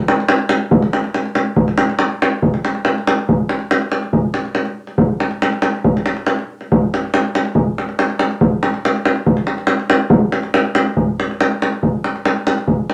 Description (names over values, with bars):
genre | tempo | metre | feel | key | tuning
balkan folk | 141 BPM | 2/4 | straight | none | none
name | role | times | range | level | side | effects
davul | percussion | 0.1-12.9 s | none | -17 LUFS | equal | none
room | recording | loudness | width
wet studio ambience, RT60 0.5 s | none | -17 LUFS | mono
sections
0.0-3.3 A section; 3.3-12.9 B section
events
none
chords
none